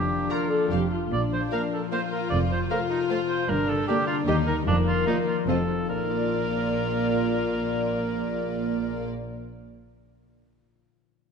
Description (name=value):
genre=cinematic, playful, whimsical film cue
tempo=150 BPM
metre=3/4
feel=straight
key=Bb major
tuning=A4 = 440 Hz
part: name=warm cor anglais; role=second line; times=0.0-9.1 s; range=D4 to D5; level=-30 LUFS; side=right 3 dB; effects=none
part: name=warm studio violin section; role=second line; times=0.0-9.0 s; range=Bb3 to F4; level=-30 LUFS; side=left 3 dB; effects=none
part: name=concert harp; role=arpeggios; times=0.0-9.9 s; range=F2 to D5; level=-31 LUFS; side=left 13 dB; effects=none
part: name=warm studio cello section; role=bass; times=0.0-9.0 s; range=Eb2 to Bb2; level=-31 LUFS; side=right 4 dB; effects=none
part: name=warm studio double bass section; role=bass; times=0.0-9.1 s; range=F1 to Eb2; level=-33 LUFS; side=right 3 dB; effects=none
part: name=warm studio violin section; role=melody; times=0.3-9.1 s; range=D5 to Bb5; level=-34 LUFS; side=left 4 dB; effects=none
part: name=warm studio viola section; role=accompaniment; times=0.3-9.0 s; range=A3 to C5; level=-31 LUFS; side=right 1 dB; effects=none
room=moderate scoring stage reverb, RT60 2.2 s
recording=nothing above 11.0 kHz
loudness=-23 LUFS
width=side -6 dB against mid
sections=0.0-5.9 A section; 5.9-8.3 B section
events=none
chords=0.0 Bb/F; 0.7 F; 1.1 Bb; 2.3 F; 3.5 Gm; 4.3 Eb; 4.7 Bb/F; 5.5 F7; 5.9 Bb